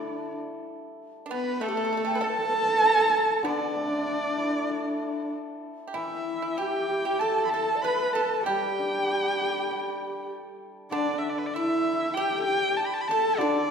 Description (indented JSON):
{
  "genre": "chinese traditional, Chinese chamber ensemble",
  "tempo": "97 BPM",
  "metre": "4/4",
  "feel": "rubato",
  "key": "D zhi mode",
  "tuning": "A4 = 441 Hz",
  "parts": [
    { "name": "clear erhu", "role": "melody", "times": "0.0-13.7 s", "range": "A4 to B5", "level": "-27 LUFS", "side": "right 1 dB", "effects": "none" },
    { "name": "low xiao", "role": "second line", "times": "0.0-13.7 s", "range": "D4 to G5", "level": "-32 LUFS", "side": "left 4 dB", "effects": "none" },
    { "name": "pipa", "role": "second line", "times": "0.0-13.7 s", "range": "A3 to B4", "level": "-33 LUFS", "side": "right 3 dB", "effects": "none" },
    { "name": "warm horsehead fiddle", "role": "second line", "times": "0.0-13.7 s", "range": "A3 to B4", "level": "-31 LUFS", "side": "right 3 dB", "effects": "none" },
    { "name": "hammered dulcimer", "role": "accompaniment", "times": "0.0-13.7 s", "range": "D3 to D5", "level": "-36 LUFS", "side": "left 2 dB", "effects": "none" }
  ],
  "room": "wet concert hall reverb, RT60 1.8 s",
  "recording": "recorded in a church or concert hall",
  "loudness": "-24 LUFS",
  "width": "side -6 dB against mid",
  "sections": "0.0-13.7 A section",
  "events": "none",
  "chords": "none",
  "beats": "0.37 | 0.98 1.60 2.21 2.82 | 3.44 4.06 4.68 5.31 | 5.95 6.58 7.21 7.84 | 8.46 9.09 9.71 10.32 | 10.94 11.55 12.17 12.78 | 13.40"
}